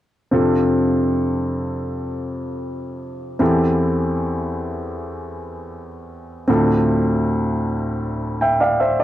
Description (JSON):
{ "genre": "pop", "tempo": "78 BPM", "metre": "4/4", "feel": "straight", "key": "F major", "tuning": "A4 = 445 Hz", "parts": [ { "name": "clear baby grand piano", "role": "accompaniment", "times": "0.3-9.0 s", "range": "D2 to G5", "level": "-18 LUFS", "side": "equal", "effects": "none" } ], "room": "light reverb", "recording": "dry, close 1970s-style studio recording", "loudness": "-18 LUFS", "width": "side -13 dB against mid", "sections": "0.3-9.0 A section", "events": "none", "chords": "0.3 F6; 3.4 Am7/E; 6.5 Dm7" }